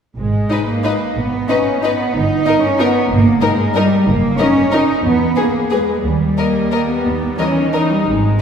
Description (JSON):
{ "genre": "classical", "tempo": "182 BPM", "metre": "3/4", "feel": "uneven beats, rubato", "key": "unclear", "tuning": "A4 = 440 Hz", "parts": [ { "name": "rich symphonic cello section", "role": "bass", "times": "0.2-8.4 s", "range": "D#3 to D#4", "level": "-16 LUFS", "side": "right 1 dB", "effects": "none" }, { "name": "warm symphonic double bass section", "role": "bass", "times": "0.2-8.3 s", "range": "F#1 to E2", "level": "-20 LUFS", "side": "right 1 dB", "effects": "none" }, { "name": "dark studio violin section", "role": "melody", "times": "0.5-7.8 s", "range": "B4 to D#5", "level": "-24 LUFS", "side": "left 4 dB", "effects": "none" }, { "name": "warm symphonic violin section", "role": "second line", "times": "0.5-8.4 s", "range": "G#4 to B4", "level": "-22 LUFS", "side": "left 4 dB", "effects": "none" }, { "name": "warm chamber viola section", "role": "accompaniment", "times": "0.5-8.1 s", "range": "A#3 to G#4", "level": "-21 LUFS", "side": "left 1 dB", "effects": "none" } ], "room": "wet concert hall reverb, RT60 2.3 s", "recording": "heard from further back in the room", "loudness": "-13 LUFS", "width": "side -7 dB against mid", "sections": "0.2-8.4 A section", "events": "none", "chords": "0.2 G#m; 2.1 D#/G; 4.1 D#m/F#; 5.0 E; 6.0 D#" }